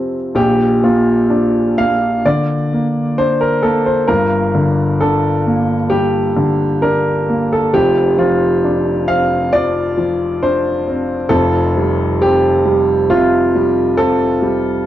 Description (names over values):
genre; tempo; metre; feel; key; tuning
neoclassical minimalist piano; 66 BPM; 4/4; rubato; Bb major; A4 = 440 Hz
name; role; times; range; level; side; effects
warm grand piano; solo; 0.0-14.9 s; F1 to G6; -12 LUFS; equal; none
room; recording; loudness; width
light reverb; worn, warbling old tape, cassette tape, warbly pitch drift; -12 LUFS; side -12 dB against mid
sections
0.4-14.9 A section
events
none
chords
0.4 Bb; 4.1 Gm; 7.7 Dm7/F; 11.3 Fadd9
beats
| 0.36 1.30 2.25 3.17 | 4.08 5.00 5.91 6.82 | 7.74 8.64 9.53 10.43 | 11.32 12.22 13.12 14.00